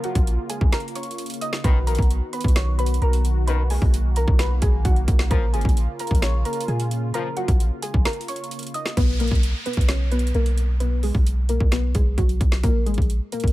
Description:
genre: hip hop, trap.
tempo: 131 BPM.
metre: 4/4.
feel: half-time.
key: unclear.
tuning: A4 = 440 Hz.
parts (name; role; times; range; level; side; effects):
warbly dusty pluck; melody; 0.0-13.5 s; F#3 to Eb6; -28 LUFS; left 1 dB; chorus, low-pass filter, ping-pong delay.
warm analog pad; sustained chords; 0.0-8.9 s; Db3 to F#4; -32 LUFS; right 1 dB; chorus.
trap drum kit; drums; 0.0-13.5 s; hi-hat, kick drum, snare drum; -22 LUFS; equal; overdrive.
warm 808-style bass; bass; 0.2-13.5 s; Ab1 to Bb2; -21 LUFS; equal; none.
warm brass ensemble; stabs; 1.6-7.3 s; F#2 to F3; -34 LUFS; left 5 dB; ping-pong delay.
downlifter; sound effects; 9.0-12.6 s; none; -36 LUFS; equal; none.
room: little or no reverb.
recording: none.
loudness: -19 LUFS.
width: side -17 dB against mid.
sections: 0.0-9.0 A section; 9.0-13.5 B section.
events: break 0.7-1.6, 8.1-9.0.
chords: 0.0 Bbm; 1.6 B; 5.3 Bbm; 9.0 B5; 12.6 N.C..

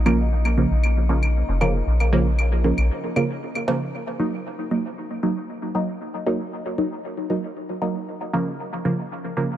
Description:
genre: dub techno.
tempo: 116 BPM.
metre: 4/4.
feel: straight.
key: Eb minor.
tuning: A4 = 440 Hz.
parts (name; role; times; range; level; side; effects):
soft dub sub bass; bass; 0.0-2.9 s; F1 to Bb1; -20 LUFS; equal; none.
metallic inharmonic drone; texture; 0.0-3.9 s; Eb4; -36 LUFS; left 8 dB; chorus, built-in reverb.
filtered dub chord stab; stabs; 0.1-9.5 s; Db3 to Eb4; -23 LUFS; right 1 dB; chorus, phaser, dub echo.
claves and cowbell; percussion; 0.1-3.8 s; none; -32 LUFS; equal; overdrive, dub echo.
room: light reverb, digital ambience.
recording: dark, warm production.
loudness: -21 LUFS.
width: side -12 dB against mid.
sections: 0.0-3.9 A section; 3.9-9.6 B section.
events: break 2.9-3.9.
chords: 0.0 Bbm; 3.9 Ebm; 8.1 Bbm.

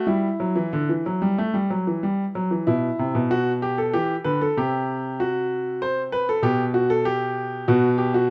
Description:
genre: classical, baroque-style two-part invention for grand piano.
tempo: 95 BPM.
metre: 4/4.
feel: uneven beats.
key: E minor.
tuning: A4 = 441 Hz.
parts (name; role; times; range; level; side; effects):
clear grand piano; solo; 0.0-8.3 s; B2 to C5; -23 LUFS; equal; none.
room: moderate stone room reverb, RT60 1.3 s.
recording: dark, warm production.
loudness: -23 LUFS.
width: mono.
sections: 0.0-2.7 A section; 2.7-8.3 B section.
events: none.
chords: 0.1 Em; 2.7 Em/B; 3.9 Em; 5.2 F#(b5, no3)/C; 6.4 Gmaj9/B; 7.7 B5.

